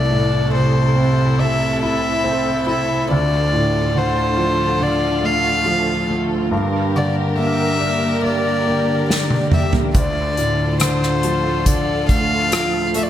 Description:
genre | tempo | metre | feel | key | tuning
pop ballad | 70 BPM | 4/4 | straight | D minor | A4 = 440 Hz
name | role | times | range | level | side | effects
warm violin | melody | 0.0-13.1 s | C5 to F5 | -21 LUFS | left 2 dB | none
clear concert grand piano | accompaniment | 0.0-13.1 s | C2 to G4 | -19 LUFS | right 1 dB | ensemble chorus
warm studio string section | sustained chords | 0.0-13.1 s | C3 to Bb4 | -23 LUFS | left 1 dB | none
unplugged drum kit | drums | 9.1-13.1 s | hi-hat, kick drum, rim click, snare drum, toms | -18 LUFS | equal | gated reverb
room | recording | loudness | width
moderate plate reverb, RT60 2.1 s | bright 1980s-style digital production | -15 LUFS | side -11 dB against mid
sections
0.0-13.1 A section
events
drum fill 9.1-9.9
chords
0.0 Am/C; 3.1 Dm; 6.5 Gm; 9.9 Dm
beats
0.52 1.38 2.23 | 3.09 3.95 4.81 5.66 | 6.52 7.38 8.23 9.09 | 9.95 10.81 11.66 12.52

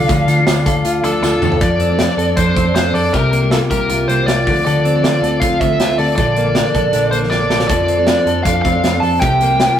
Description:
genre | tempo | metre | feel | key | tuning
jangly indie pop | 158 BPM | 4/4 | straight | F major | A4 = 439 Hz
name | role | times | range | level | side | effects
biting lead guitar | melody | 0.0-9.8 s | A4 to A5 | -17 LUFS | left 1 dB | overdrive
picked twelve-string acoustic guitar | accompaniment | 0.0-9.8 s | Bb2 to A4 | -22 LUFS | right 5 dB | none
direct-recorded clean electric guitar | arpeggios | 0.0-9.8 s | Bb2 to A4 | -18 LUFS | left 2 dB | none
vintage muted picked electric bass | bass | 0.0-9.7 s | Bb1 to F2 | -21 LUFS | right 1 dB | none
modern studio drum kit | drums | 0.1-9.7 s | hi-hat, kick drum, snare drum, toms | -19 LUFS | right 1 dB | none
tambourine | percussion | 0.1-1.5 s | none | -35 LUFS | right 6 dB | none
room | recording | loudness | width
wet stone room reverb, RT60 1.3 s | rough rehearsal-room recording | -12 LUFS | side -10 dB against mid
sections
0.0-1.6 A section; 1.6-9.8 B section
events
drum fill 1.2-1.6, 7.3-7.7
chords
0.0 Dm; 1.6 F6; 3.1 C7sus4; 4.5 Dm7; 6.2 Bbmaj7; 7.7 F6; 9.2 C7sus4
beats
| 0.10 0.47 0.85 1.24 | 1.61 2.00 2.38 2.75 | 3.14 3.52 3.90 4.28 | 4.66 5.04 5.42 5.80 | 6.18 6.56 6.94 7.32 | 7.70 8.08 8.46 8.84 | 9.22 9.60

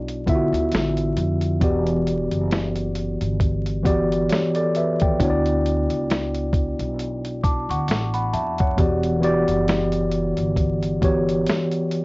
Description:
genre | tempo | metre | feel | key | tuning
lo-fi hip hop | 67 BPM | 4/4 | swing 56% on 16ths | E dorian | A4 = 442 Hz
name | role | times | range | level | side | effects
mellow tine electric piano | accompaniment | 0.0-12.0 s | D3 to D6 | -21 LUFS | equal | medium stereo tremolo, cassette tape
upright bass | bass | 0.0-11.4 s | E1 to F2 | -26 LUFS | equal | none
lo-fi sampler-style drum kit | drums | 0.1-12.0 s | hi-hat, kick drum, snare drum | -23 LUFS | equal | vintage 12-bit sampler grit
room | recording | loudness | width
light reverb | worn, warbling old tape, cassette tape, vinyl crackle, warbly pitch drift, nothing above 7.6 kHz | -19 LUFS | side -25 dB against mid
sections
0.0-12.0 A section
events
none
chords
0.0 D69; 1.6 Em7; 5.2 D69; 8.8 Em7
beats
0.72 | 1.62 2.51 3.41 4.30 | 5.20 6.09 6.99 7.89 | 8.78 9.68 10.57 11.47

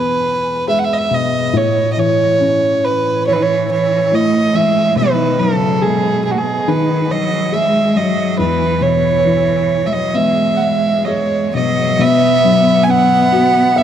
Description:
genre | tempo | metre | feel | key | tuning
celtic folk, Celtic slow air | 70 BPM | 4/4 | rubato | E major | A4 = 444 Hz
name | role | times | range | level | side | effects
rich fiddle | melody | 0.0-13.8 s | F#4 to G#5 | -15 LUFS | right 2 dB | none
felt-muted upright piano | accompaniment | 0.0-13.8 s | E2 to E5 | -17 LUFS | left 4 dB | none
bright cello | second line | 3.3-13.8 s | A2 to B3 | -18 LUFS | right 3 dB | none
room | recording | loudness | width
wet cathedral reverb, RT60 4.2 s | dark, warm production | -12 LUFS | side -9 dB against mid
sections
0.0-12.0 A section; 12.0-13.8 B section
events
none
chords
0.0 E; 1.5 A; 5.0 B6; 8.4 E6; 12.0 Bsus4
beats
0.68 | 1.53 2.40 3.26 4.11 | 4.96 5.82 6.67 7.53 | 8.38 9.24 10.13 11.06 | 11.98 12.87 13.76

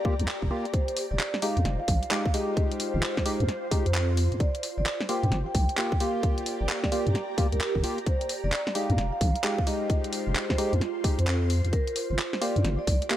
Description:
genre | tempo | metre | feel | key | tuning
UK garage, two-step garage | 131 BPM | 4/4 | swing 64% on 16ths | F dorian | A4 = 439 Hz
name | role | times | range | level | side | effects
electronic kick drum | drums | 0.0-13.0 s | none | -26 LUFS | equal | none
ethereal airy pad | texture | 0.0-13.2 s | F4 to Bb5 | -35 LUFS | right 1 dB | ensemble chorus, built-in reverb, phaser, sidechain pumping
percussive organ stab | stabs | 0.1-13.2 s | Ab3 to G4 | -32 LUFS | equal | analog chorus, dub echo
deep soft wobble bass | bass | 0.2-13.0 s | F1 to G2 | -26 LUFS | equal | chorus, tube saturation
garage drum kit | drums | 0.2-13.2 s | handclaps, hi-hat, snare drum | -32 LUFS | equal | none
vibraphone with soft mallets | melody | 0.7-13.2 s | Bb4 to G5 | -34 LUFS | right 2 dB | vintage 12-bit sampler grit, dub echo
room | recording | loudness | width
light reverb | none | -24 LUFS | side -12 dB against mid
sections
0.0-13.2 A section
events
none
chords
0.0 Gm7; 0.7 Fm9; 4.4 Gm7; 8.1 Fm9; 11.7 Gm7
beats
0.28 | 0.74 1.20 1.65 2.11 | 2.57 3.03 3.49 3.94 | 4.40 4.86 5.32 5.78 | 6.23 6.69 7.15 7.61 | 8.07 8.52 8.98 9.44 | 9.90 10.36 10.81 11.27 | 11.73 12.19 12.65 13.10

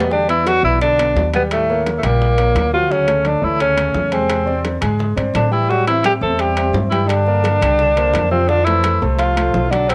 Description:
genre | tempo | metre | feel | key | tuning
Afro-Cuban jazz | 172 BPM | 4/4 | straight | unclear | A4 = 444 Hz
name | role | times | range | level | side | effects
warm tenor saxophone | melody | 0.0-9.9 s | A3 to A4 | -19 LUFS | equal | cassette tape
mellow trombone | second line | 0.0-9.9 s | A2 to A3 | -30 LUFS | equal | cassette tape
warm concert grand piano | accompaniment | 0.0-9.9 s | F3 to G#5 | -25 LUFS | equal | cassette tape
upright bass | bass | 0.0-9.9 s | A#1 to A2 | -22 LUFS | equal | none
timbales | percussion | 0.0-9.9 s | none | -30 LUFS | equal | none
bongos | percussion | 0.1-9.9 s | none | -33 LUFS | equal | none
congas | percussion | 0.1-9.9 s | none | -32 LUFS | equal | none
room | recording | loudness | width
light reverb, small room ambience | home recording on cassette | -16 LUFS | mono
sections
0.1-9.9 A section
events
none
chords
0.1 Em7; 1.5 D#7; 2.9 Dmaj9; 4.3 E7alt; 5.7 Am7; 7.1 Gm; 7.8 Csus2; 8.5 Fmaj7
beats
| 0.12 0.47 0.82 1.16 | 1.51 1.86 2.21 2.56 | 2.91 3.25 3.60 3.95 | 4.30 4.65 5.00 5.35 | 5.70 6.05 6.40 6.75 | 7.10 7.45 7.79 8.14 | 8.49 8.84 9.19 9.54 | 9.89

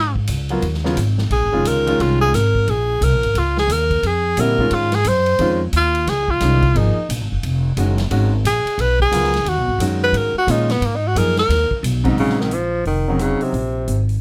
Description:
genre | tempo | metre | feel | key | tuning
modal jazz | 177 BPM | 4/4 | swing 63% on 8ths | Bb minor | A4 = 439 Hz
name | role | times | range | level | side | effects
breathy tenor saxophone | melody | 0.0-14.1 s | C3 to C5 | -21 LUFS | equal | none
upright bass | bass | 0.0-14.2 s | F1 to Bb2 | -22 LUFS | equal | none
swinging big-band drum kit | drums | 0.2-14.1 s | hi-hat, kick drum, ride cymbal, rim click, snare drum | -31 LUFS | equal | none
clear upright piano | accompaniment | 0.5-2.3, 4.4-13.5 s | Ab2 to Bb4 | -24 LUFS | equal | none
room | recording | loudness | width
little or no reverb | close, detailed microphones | -18 LUFS | mono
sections
0.0-12.2 A section; 12.2-14.2 B section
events
tenor saxophone solo 0.0-12.2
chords
0.0 Abm7; 1.3 Bbm9; 6.7 Abm9; 12.2 Bbm9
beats
0.29 0.63 0.97 | 1.31 1.65 1.99 2.33 | 2.67 3.01 3.35 3.69 | 4.03 4.37 4.71 5.05 | 5.39 5.73 6.07 6.41 | 6.75 7.09 7.43 7.76 | 8.10 8.44 8.78 9.12 | 9.46 9.80 10.14 10.48 | 10.82 11.16 11.49 11.84 | 12.18 12.52 12.86 13.20 | 13.54 13.88

